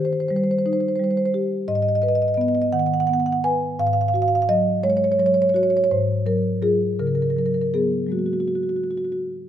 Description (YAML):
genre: classical, contemporary piece for solo marimba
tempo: 56 BPM (dotted quarters)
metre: 6/8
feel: uneven beats, rubato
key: Gb major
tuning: A4 = 440 Hz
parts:
  - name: marimba with soft mallets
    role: solo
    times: 0.0-9.5 s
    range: Ab2 to Ab5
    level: -19 LUFS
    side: equal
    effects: none
room: light reverb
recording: close, detailed microphones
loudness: -18 LUFS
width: side -10 dB against mid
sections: 0.0-9.5 A section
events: none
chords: 0.0 Eb6; 1.7 Abm7; 3.8 Gbsus2/Ab; 5.9 Ab13; 7.0 Db7sus4; 8.1 Gbadd9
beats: 0.64 | 1.68 2.73 | 3.78 4.83 | 5.91 6.99 | 8.10 9.22